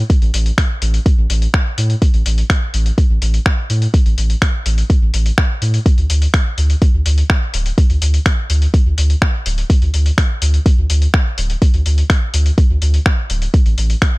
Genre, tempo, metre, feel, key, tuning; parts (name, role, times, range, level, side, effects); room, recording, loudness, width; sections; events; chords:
dub techno; 125 BPM; 4/4; straight; A4 = 440 Hz
soft dub sub bass; bass; 0.0-14.0 s; D1 to A2; -14 LUFS; equal; tube saturation, sidechain pumping
electronic kick drum; drums; 0.1-14.1 s; -13 LUFS; equal
lo-fi sampler-style drum kit; drums; 0.1-14.1 s; finger snaps, hi-hat; -22 LUFS; left 1 dB
little or no reverb; -12 LUFS; side -23 dB against mid
0.0-14.2 A section